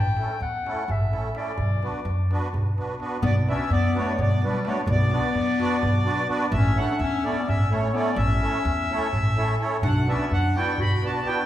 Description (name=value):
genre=balkan folk, Balkan wedding band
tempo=255 BPM (eighths)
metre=7/8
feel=straight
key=B minor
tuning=A4 = 441 Hz
part: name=clear clarinet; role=second line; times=0.0-11.5 s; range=G3 to G5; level=-28 LUFS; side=left 3 dB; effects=none
part: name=upright bass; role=bass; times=0.0-11.2 s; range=A1 to F#2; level=-27 LUFS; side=equal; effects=none
part: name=darbuka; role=percussion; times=0.1-11.4 s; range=none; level=-27 LUFS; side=right 1 dB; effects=none
part: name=musette accordion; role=accompaniment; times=0.2-11.4 s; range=A3 to D5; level=-29 LUFS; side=right 2 dB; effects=none
part: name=accordion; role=melody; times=3.2-11.5 s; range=B4 to B5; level=-28 LUFS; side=equal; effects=none
room=wet recital hall reverb, RT60 1.6 s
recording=recorded in a church or concert hall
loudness=-21 LUFS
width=side -12 dB against mid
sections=0.0-3.2 A section; 3.2-11.5 B section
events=clarinet solo 0.0-3.2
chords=0.0 A; 1.6 Bm; 6.5 A; 9.8 Bm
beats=0.16 0.40 0.63 0.87 1.11 1.34 | 1.58 1.81 2.05 2.28 2.52 2.75 2.99 | 3.23 3.46 3.69 3.93 4.17 4.40 4.63 | 4.87 5.11 5.34 5.58 5.81 6.04 6.28 | 6.52 6.75 6.99 7.22 7.46 7.69 7.93 | 8.17 8.40 8.64 8.87 9.11 9.35 9.58 | 9.82 10.06 10.29 10.53 10.77 11.01 11.24